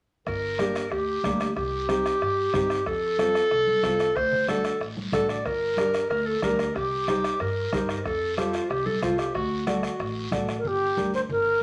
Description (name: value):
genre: latin, cumbia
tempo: 185 BPM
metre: 4/4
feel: straight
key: G minor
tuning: A4 = 439 Hz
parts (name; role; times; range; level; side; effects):
- breathy clarinet; second line; 0.3-10.4 s; F4 to D5; -28 LUFS; equal; none
- upright bass; bass; 0.3-11.6 s; G1 to G2; -37 LUFS; equal; none
- bombo; percussion; 0.3-10.6 s; none; -37 LUFS; equal; none
- guiro; percussion; 0.3-11.6 s; none; -43 LUFS; equal; none
- dark upright piano; accompaniment; 0.6-11.2 s; Bb3 to D5; -33 LUFS; equal; none
- congas; percussion; 0.6-11.5 s; none; -36 LUFS; equal; none
- alto flute; melody; 10.6-11.6 s; G4 to C5; -25 LUFS; equal; none
room: wet studio reverb, RT60 0.7 s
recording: none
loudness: -26 LUFS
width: mono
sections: 0.3-10.6 A section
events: none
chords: 0.3 Gm; 1.6 Cm; 2.9 F; 4.2 D7; 5.5 Gm; 6.8 Cm; 8.1 F; 9.3 D; 10.6 Gm